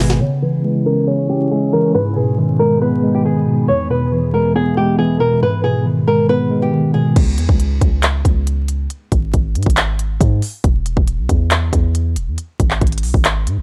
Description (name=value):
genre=hip hop, trap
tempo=138 BPM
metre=4/4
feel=half-time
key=unclear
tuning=A4 = 439 Hz
part: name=flamenco guitar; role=melody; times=0.0-7.1 s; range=G#3 to C#5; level=-21 LUFS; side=equal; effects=low-pass filter
part: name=mellow tine electric piano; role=accompaniment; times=0.0-7.2 s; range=E2 to C#5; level=-18 LUFS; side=equal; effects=low-pass filter
part: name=glassy FM pad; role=sustained chords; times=0.0-7.1 s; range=E2 to G#5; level=-28 LUFS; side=equal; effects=ensemble chorus, built-in reverb, low-pass filter
part: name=warm 808-style bass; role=bass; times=0.0-0.2, 7.2-13.6 s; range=D#1 to G#2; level=-19 LUFS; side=equal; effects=none
part: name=trap drum kit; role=drums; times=0.1-0.2, 7.2-13.6 s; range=crash cymbal, handclaps, hi-hat, kick drum, snare drum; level=-18 LUFS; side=equal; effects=none
room=digital ambience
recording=dry, gritty hardware recording, transformer saturation, vinyl crackle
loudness=-16 LUFS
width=mono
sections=0.2-7.2 A section; 7.2-13.6 B section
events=drum fill 0.0; filter sweep 0.2-7.2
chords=0.2 C#m; 1.9 G#m; 3.7 E; 5.4 G#m; 7.2 N.C.; 10.6 E5; 12.4 N.C.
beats=| 0.21 0.64 1.07 1.51 | 1.95 2.38 2.81 3.25 | 3.68 4.12 4.55 4.99 | 5.42 5.86 6.29 6.73 | 7.16 7.60 8.03 8.47 | 8.90 9.34 9.77 10.21 | 10.64 11.07 11.51 11.95 | 12.38 12.81 13.25